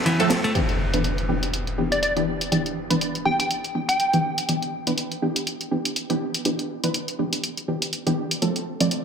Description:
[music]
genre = breakbeat, breaks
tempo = 122 BPM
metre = 4/4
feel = swing 56% on 16ths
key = E phrygian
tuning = A4 = 440 Hz
[part]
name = orchestra-hit-like synth stab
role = stabs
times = 0.0-9.0 s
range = E3 to D5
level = -24 LUFS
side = right 1 dB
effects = built-in reverb, ping-pong delay
[part]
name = clean electric guitar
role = riff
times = 0.1-0.5 s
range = E3 to A3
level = -26 LUFS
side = equal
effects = ping-pong delay
[part]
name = electronic hi-hat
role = drums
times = 0.1-9.0 s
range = none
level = -27 LUFS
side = equal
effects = overdrive, low-pass filter on hats, low-pass filter on room
[part]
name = impact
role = sound effects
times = 0.5-2.5 s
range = none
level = -28 LUFS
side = equal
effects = none
[part]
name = plucky unison lead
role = melody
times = 1.9-4.4 s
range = D5 to G5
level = -25 LUFS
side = equal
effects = phaser, small speaker sound, ping-pong delay
[sound]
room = moderate lush hall reverb, RT60 2.0 s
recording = none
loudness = -21 LUFS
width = side -7 dB against mid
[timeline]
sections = 0.6-9.0 A section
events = impact 0.6-2.5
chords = 0.0 F; 0.6 Em7; 8.4 F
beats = 0.06 | 0.55 1.04 1.53 2.03 | 2.52 3.01 3.50 3.99 | 4.49 4.98 5.47 5.96 | 6.45 6.95 7.44 7.93 | 8.42 8.91

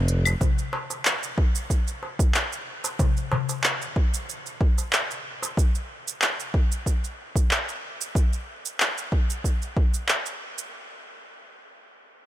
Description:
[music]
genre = organic downtempo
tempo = 93 BPM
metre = 4/4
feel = straight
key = none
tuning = none
[part]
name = deep house drum kit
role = drums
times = 0.1-10.7 s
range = claves, handclaps, hi-hat, shaker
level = -27 LUFS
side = equal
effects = none
[part]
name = darbuka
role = percussion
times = 0.3-5.5 s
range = none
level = -30 LUFS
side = left 3 dB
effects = none
[part]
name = electronic kick drum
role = drums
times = 0.4-9.9 s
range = none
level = -22 LUFS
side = equal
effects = none
[sound]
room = little or no reverb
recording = none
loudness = -23 LUFS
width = side -13 dB against mid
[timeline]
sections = 0.0-10.7 A section; 10.7-12.3 B section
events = none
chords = none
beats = | 0.41 1.05 1.70 2.34 | 2.99 3.63 4.28 4.92 | 5.57 6.21 6.86 7.50 | 8.15 8.80 9.44 10.09

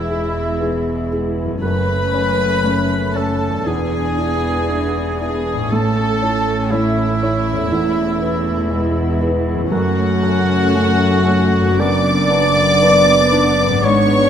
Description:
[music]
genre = cinematic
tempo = 59 BPM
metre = 4/4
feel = rubato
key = unclear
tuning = A4 = 440 Hz
[part]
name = warm symphonic violin section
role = melody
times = 0.0-14.3 s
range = E5 to D6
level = -24 LUFS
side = left 3 dB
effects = none
[part]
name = dark clarinet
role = second line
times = 0.0-14.3 s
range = E4 to D5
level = -22 LUFS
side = equal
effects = none
[part]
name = rich studio violin section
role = second line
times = 0.0-14.3 s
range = E4 to D5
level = -25 LUFS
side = left 1 dB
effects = none
[part]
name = warm oboe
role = second line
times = 0.0-14.3 s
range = E4 to D5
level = -23 LUFS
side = right 1 dB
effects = none
[part]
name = dark symphonic viola section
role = accompaniment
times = 0.0-14.3 s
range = G#3 to E4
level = -23 LUFS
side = right 2 dB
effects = none
[part]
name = felt-muted upright piano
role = accompaniment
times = 0.0-14.3 s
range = E2 to D5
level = -22 LUFS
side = equal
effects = none
[part]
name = mellow French horn section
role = sustained chords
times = 0.0-14.3 s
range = G#3 to D4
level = -26 LUFS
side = left 4 dB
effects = none
[part]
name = concert harp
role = arpeggios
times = 0.0-14.3 s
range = E2 to B4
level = -27 LUFS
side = left 7 dB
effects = none
[part]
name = dark symphonic double bass section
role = bass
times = 0.0-14.3 s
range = E1 to A1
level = -24 LUFS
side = right 2 dB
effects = none
[part]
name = warm symphonic cello section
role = bass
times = 0.0-14.3 s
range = E2 to A2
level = -23 LUFS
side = right 1 dB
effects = none
[sound]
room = moderate scoring stage reverb, RT60 1.7 s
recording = none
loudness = -14 LUFS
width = side -8 dB against mid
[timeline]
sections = 0.0-14.3 A section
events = none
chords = 0.0 E; 1.6 F#m; 3.7 E7; 5.7 A; 7.7 E; 9.7 F#m; 11.8 Bm/F#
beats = 0.61 | 1.62 2.64 3.67 4.70 | 5.71 6.71 7.71 8.71 | 9.72 10.74 11.80 12.83 | 13.85

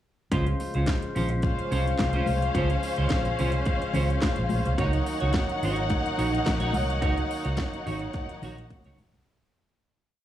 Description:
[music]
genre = disco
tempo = 107 BPM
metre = 4/4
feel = straight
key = Db major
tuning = A4 = 440 Hz
[part]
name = clean electric guitar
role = accompaniment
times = 0.3-9.2 s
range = Db4 to Db5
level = -33 LUFS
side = right 4 dB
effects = lush chorus
[part]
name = percussive tonewheel organ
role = sustained chords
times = 0.3-9.2 s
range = Db3 to C5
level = -34 LUFS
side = left 1 dB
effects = overdrive, lush chorus
[part]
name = vintage muted fingered electric bass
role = bass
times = 0.3-9.2 s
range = Ab1 to Db2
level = -27 LUFS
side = equal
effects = none
[part]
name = house drum kit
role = drums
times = 0.3-9.3 s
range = handclaps, hi-hat, kick drum, snare drum, toms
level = -30 LUFS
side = equal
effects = none
[part]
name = congas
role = percussion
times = 0.3-9.1 s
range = none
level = -35 LUFS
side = left 4 dB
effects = none
[part]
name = clear symphonic string section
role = second line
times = 1.4-9.2 s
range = Db4 to Gb5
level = -30 LUFS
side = left 2 dB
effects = none
[sound]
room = light reverb, digital ambience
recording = studio reverb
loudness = -24 LUFS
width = side -12 dB against mid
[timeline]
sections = 0.3-9.3 verse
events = fade-out 7.0-9.3; drum fill 8.7-9.3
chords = 0.3 Dbmaj7; 4.8 Ebm7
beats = | 0.32 0.87 1.43 1.99 | 2.55 3.10 3.66 4.22 | 4.78 5.34 5.90 6.46 | 7.02 7.58 8.14 8.71

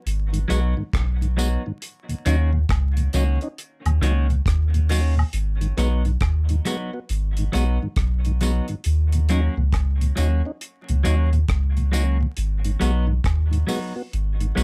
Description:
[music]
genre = roots reggae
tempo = 68 BPM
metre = 4/4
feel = swing 63% on 16ths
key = G# minor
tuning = A4 = 436 Hz
[part]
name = soft dub sub bass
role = bass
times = 0.1-14.6 s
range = G#1 to D#2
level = -22 LUFS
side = equal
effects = none
[part]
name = deep reggae drum kit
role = drums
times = 0.1-14.6 s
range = hi-hat, kick drum, rim click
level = -29 LUFS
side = equal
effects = none
[part]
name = mellow tonewheel organ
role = accompaniment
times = 0.3-14.6 s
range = D#2 to F#4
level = -31 LUFS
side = equal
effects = slow rotary speaker
[part]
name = semi-hollow electric guitar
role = accompaniment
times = 0.5-14.6 s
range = D#3 to F#4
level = -30 LUFS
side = equal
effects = tape echo
[part]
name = tambourine and woodblock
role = percussion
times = 0.5-14.6 s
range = none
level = -36 LUFS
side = equal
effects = none
[sound]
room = little or no reverb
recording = vinyl crackle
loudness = -22 LUFS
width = mono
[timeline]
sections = 0.0-14.6 A section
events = none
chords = 0.0 G#m7; 1.8 D#m7; 5.3 G#m7; 8.9 D#m7; 12.4 G#m7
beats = 0.05 0.93 | 1.81 2.69 3.58 4.46 | 5.33 6.21 7.09 7.97 | 8.85 9.73 10.61 11.49 | 12.37 13.25 14.13

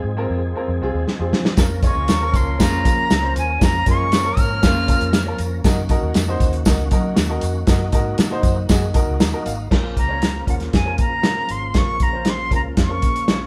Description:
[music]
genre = uptempo 1960s-style soul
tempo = 118 BPM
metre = 4/4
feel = straight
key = Bb minor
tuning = A4 = 440 Hz
[part]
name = overdriven tonewheel organ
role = sustained chords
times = 0.0-13.5 s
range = Db3 to Bb4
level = -34 LUFS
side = equal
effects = fast rotary speaker, chorus vibrato
[part]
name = vintage muted fingered electric bass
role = bass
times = 0.0-13.5 s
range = Ab1 to Gb3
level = -26 LUFS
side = equal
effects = none
[part]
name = warm upright piano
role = accompaniment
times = 0.2-13.5 s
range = C4 to Bb5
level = -30 LUFS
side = equal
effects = none
[part]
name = warm soul drum kit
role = drums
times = 1.1-13.4 s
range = crash cymbal, hi-hat, kick drum, snare drum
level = -20 LUFS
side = equal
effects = none
[part]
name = tambourine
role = percussion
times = 1.6-9.6 s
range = none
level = -39 LUFS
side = equal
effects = none
[part]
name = warm horn section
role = second line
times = 1.8-5.1 s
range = Db3 to Bb4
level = -29 LUFS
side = equal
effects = none
[part]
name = jazz flute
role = melody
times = 1.9-5.4, 10.0-13.5 s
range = Gb5 to F6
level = -24 LUFS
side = equal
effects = none
[sound]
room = moderate studio reverb, RT60 0.9 s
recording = band playing live in one room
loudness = -19 LUFS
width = mono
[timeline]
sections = 0.0-9.7 A section; 9.7-13.5 B section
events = drum fill 1.1-1.6; upright piano fill 9.0-9.7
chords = 0.0 Fm; 1.6 Bbm; 5.6 Gb6; 9.7 Bbm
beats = 0.05 0.56 1.07 | 1.58 2.09 2.60 3.10 | 3.61 4.12 4.63 5.14 | 5.65 6.16 6.66 7.17 | 7.68 8.19 8.70 9.21 | 9.71 10.22 10.73 11.24 | 11.75 12.26 12.77 13.28

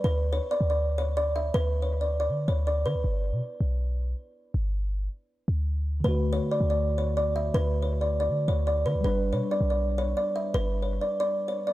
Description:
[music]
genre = hip hop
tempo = 160 BPM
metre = 4/4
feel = half-time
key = unclear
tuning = A4 = 440 Hz
[part]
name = kalimba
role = melody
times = 0.0-3.0, 6.0-11.7 s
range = B4 to E5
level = -28 LUFS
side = right 1 dB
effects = analog delay
[part]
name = mellow tine electric piano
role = accompaniment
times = 0.0-0.1, 6.0-11.7 s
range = D3 to B4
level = -32 LUFS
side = left 2 dB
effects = slow stereo tremolo
[part]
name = clean 808-style bass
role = bass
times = 0.0-11.0 s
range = G1 to D3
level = -27 LUFS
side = equal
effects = none
[sound]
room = small room ambience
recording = dry, gritty hardware recording, transformer saturation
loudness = -25 LUFS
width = side -16 dB against mid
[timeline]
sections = 0.0-11.7 A section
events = break 3.0-6.0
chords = 0.0 Bmadd9/D; 3.0 G; 6.0 D; 9.0 G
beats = | 0.04 0.42 0.79 1.17 | 1.54 1.92 2.29 2.67 | 3.04 3.42 3.79 4.17 | 4.54 4.92 5.29 5.67 | 6.04 6.42 6.79 7.17 | 7.54 7.92 8.29 8.67 | 9.04 9.42 9.79 10.17 | 10.54 10.92 11.29 11.67

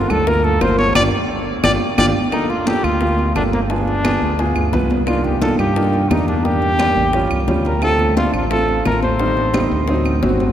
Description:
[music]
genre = Afro-Cuban jazz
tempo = 175 BPM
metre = 4/4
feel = straight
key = G minor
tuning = A4 = 440 Hz
[part]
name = mellow trumpet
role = melody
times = 0.0-10.1 s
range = Bb3 to D5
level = -20 LUFS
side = equal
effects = none
[part]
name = warm baby grand piano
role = accompaniment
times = 0.0-10.5 s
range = F#3 to B4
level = -20 LUFS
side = equal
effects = none
[part]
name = modern bright fingered electric bass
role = bass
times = 0.0-10.5 s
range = G1 to G2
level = -20 LUFS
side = equal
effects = none
[part]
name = bongos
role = percussion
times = 0.1-10.5 s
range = none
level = -27 LUFS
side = left 3 dB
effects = none
[part]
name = claves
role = percussion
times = 0.1-10.2 s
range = none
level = -30 LUFS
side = right 2 dB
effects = none
[part]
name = congas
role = percussion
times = 0.1-10.5 s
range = none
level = -23 LUFS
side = equal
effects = none
[sound]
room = wet cathedral reverb, RT60 5.3 s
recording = recorded in a church or concert hall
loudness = -14 LUFS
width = side -10 dB against mid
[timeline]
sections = 0.0-2.3 A section; 2.3-10.5 B section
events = trumpet solo 0.0-2.3; band accent 1.0-2.3; drum fill 1.6-2.3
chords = 0.0 Gm7; 2.3 Gm9; 3.7 G7b9; 5.1 Cm11; 6.4 Em7b5; 7.1 A7alt; 7.8 Dm7; 9.2 Am7b5; 9.9 D7b9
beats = 0.27 0.61 | 0.95 1.30 1.64 1.98 | 2.32 2.67 3.01 3.35 | 3.70 4.04 4.39 4.73 | 5.07 5.42 5.76 6.11 | 6.45 6.79 7.14 7.48 | 7.82 8.17 8.51 8.86 | 9.20 9.54 9.88 10.23

